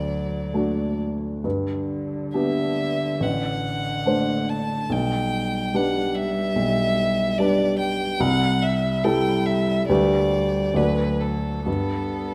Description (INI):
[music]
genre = classical, slow romantic movement for piano trio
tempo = 70 BPM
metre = 4/4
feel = uneven beats, rubato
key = G major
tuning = A4 = 438 Hz
[part]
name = rich violin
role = melody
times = 0.0-12.3 s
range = A4 to A5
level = -29 LUFS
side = equal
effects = none
[part]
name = dark cello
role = second line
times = 0.0-12.3 s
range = D3 to B3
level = -32 LUFS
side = equal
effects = none
[part]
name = warm baby grand piano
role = accompaniment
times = 0.0-12.3 s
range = A1 to D5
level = -25 LUFS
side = equal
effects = none
[sound]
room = moderate scoring stage reverb, RT60 1.6 s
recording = close, detailed microphones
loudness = -23 LUFS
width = mono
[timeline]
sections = 0.0-12.3 A section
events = none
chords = 0.0 D; 1.4 G; 3.2 D7/A; 4.9 G/B; 8.2 Am7/C; 9.9 G/D; 10.8 D; 11.7 G